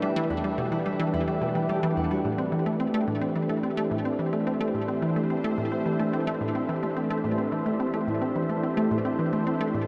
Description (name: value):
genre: ambient, sequencer-driven space music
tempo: 108 BPM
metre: 4/4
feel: straight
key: A minor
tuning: A4 = 438 Hz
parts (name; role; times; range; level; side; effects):
- sweeping resonant pad; sustained chords; 0.0-9.9 s; E3 to C5; -31 LUFS; equal; chorus
- Celtic harp; arpeggios; 0.0-9.9 s; A3 to F#5; -40 LUFS; equal; none
- resonant blip pluck; riff; 0.0-9.8 s; E2 to C4; -30 LUFS; equal; chorus, tape echo
- wind-like tuned noise texture; texture; 0.0-9.9 s; E4 to E5; -39 LUFS; equal; built-in reverb
room: wet huge ambient reverb, RT60 7.6 s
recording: dark, warm production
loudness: -27 LUFS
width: mono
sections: 0.0-2.2 A section; 2.2-9.9 B section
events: none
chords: 0.0 Emadd9; 2.2 Am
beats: | 0.02 0.58 1.14 1.69 | 2.25 2.80 3.36 3.91 | 4.47 5.02 5.58 6.13 | 6.69 7.25 7.80 8.36 | 8.91 9.47